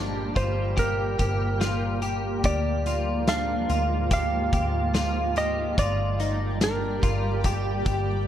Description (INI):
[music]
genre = dream pop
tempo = 72 BPM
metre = 4/4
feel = straight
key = unclear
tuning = A4 = 440 Hz
[part]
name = shimmering ambient pad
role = sustained chords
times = 0.0-8.3 s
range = Ab2 to D5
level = -30 LUFS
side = equal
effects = chorus, built-in reverb
[part]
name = clean electric guitar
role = arpeggios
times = 0.0-8.3 s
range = D4 to G4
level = -32 LUFS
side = left 2 dB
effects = ensemble chorus, dub echo
[part]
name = vintage muted fingered electric bass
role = bass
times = 0.0-8.3 s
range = G1 to D2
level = -28 LUFS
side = equal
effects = none
[part]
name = clean lap steel guitar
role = melody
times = 0.4-7.4 s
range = Bb4 to F5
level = -29 LUFS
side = right 2 dB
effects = dub echo
[part]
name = loose indie drum kit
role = drums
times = 0.4-8.1 s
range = hi-hat, kick drum, snare drum, tambourine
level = -28 LUFS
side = equal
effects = none
[sound]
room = light reverb, small room ambience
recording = echo-heavy mix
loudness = -23 LUFS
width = side -10 dB against mid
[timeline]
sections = 0.0-8.3 A section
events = none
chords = 0.0 Gm; 2.4 Ddim; 5.8 Gm